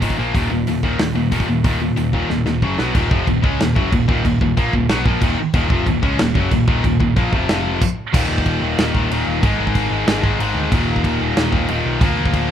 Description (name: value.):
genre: heavy metal.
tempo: 185 BPM.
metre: 4/4.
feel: straight.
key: Eb minor.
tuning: A4 = 441 Hz.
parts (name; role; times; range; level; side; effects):
scooped high-gain guitar; riff; 0.0-12.5 s; Eb2 to Db4; -22 LUFS; right 9 dB; distortion.
tight distorted guitar; riff; 0.0-12.5 s; Eb2 to Db4; -21 LUFS; left 9 dB; distortion.
picked electric bass; bass; 0.0-12.5 s; Eb1 to Eb2; -23 LUFS; equal; none.
modern studio drum kit; drums; 0.0-12.4 s; china cymbal, crash cymbal, hi-hat, kick drum, snare drum; -20 LUFS; equal; none.
room: studio reverb.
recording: rough home demo mix.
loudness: -15 LUFS.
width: side -9 dB against mid.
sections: 0.0-2.9 A section; 2.9-8.1 B section; 8.1-12.5 C section.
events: drum fill 2.3-2.9.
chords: 0.2 Bb5; 0.3 Eb5; 2.6 Gb5; 2.8 B5; 2.9 Ebm; 7.3 F5; 7.8 N.C.; 8.1 Eb5; 9.4 Ab5; 10.7 Eb5; 12.0 Bb/D.